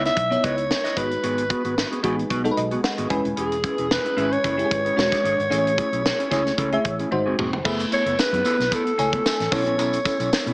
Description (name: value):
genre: polished 1980s jazz-funk pop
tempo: 112 BPM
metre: 4/4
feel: swing 54% on 16ths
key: unclear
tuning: A4 = 440 Hz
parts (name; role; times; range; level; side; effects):
- breathy alto saxophone; melody; 0.0-10.5 s; G#4 to E5; -23 LUFS; equal; none
- bell-like FM electric piano; accompaniment; 0.0-10.5 s; G#3 to G#5; -26 LUFS; equal; phaser, analog chorus
- mellow electric guitar; riff; 0.0-10.5 s; B3 to D#5; -27 LUFS; right 1 dB; wide subtle chorus
- vintage muted fingered electric bass; bass; 0.0-10.5 s; D#1 to B2; -31 LUFS; equal; none
- tight funk drum kit; drums; 0.1-10.5 s; crash cymbal, hi-hat, kick drum, snare drum, toms; -26 LUFS; equal; gated reverb
- tambourine; percussion; 7.7-10.5 s; none; -34 LUFS; right 1 dB; none
room: moderate digital room reverb, RT60 1.2 s, small room ambience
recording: small speaker sound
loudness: -20 LUFS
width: side -26 dB against mid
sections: 0.0-7.7 A section; 7.7-10.5 B section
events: FM electric piano fill 2.3-3.4; drum fill 7.1-7.7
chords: 0.0 C#m9; 1.0 G#m7; 3.1 E6; 5.0 E13; 5.5 Amaj7; 7.1 G#7; 7.7 F#m11; 9.5 B9sus4